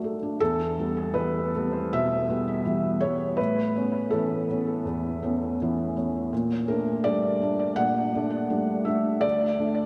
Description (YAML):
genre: neoclassical minimalist piano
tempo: 82 BPM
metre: 4/4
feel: rubato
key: unclear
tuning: A4 = 442 Hz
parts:
  - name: felt-muted upright piano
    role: solo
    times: 0.0-9.9 s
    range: D2 to F#5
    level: -26 LUFS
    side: equal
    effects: tape echo
room: wet lush hall reverb, RT60 3.0 s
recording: dreamy mix soaked in reverb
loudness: -26 LUFS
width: mono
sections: 0.4-9.9 A section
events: none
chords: 0.4 Em; 3.4 Aadd9; 6.3 Gmadd9/Bb; 9.2 D5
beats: | 0.40 1.14 1.91 2.65 | 3.38 4.11 4.85 5.59 | 6.32 7.05 7.78 8.51 | 9.24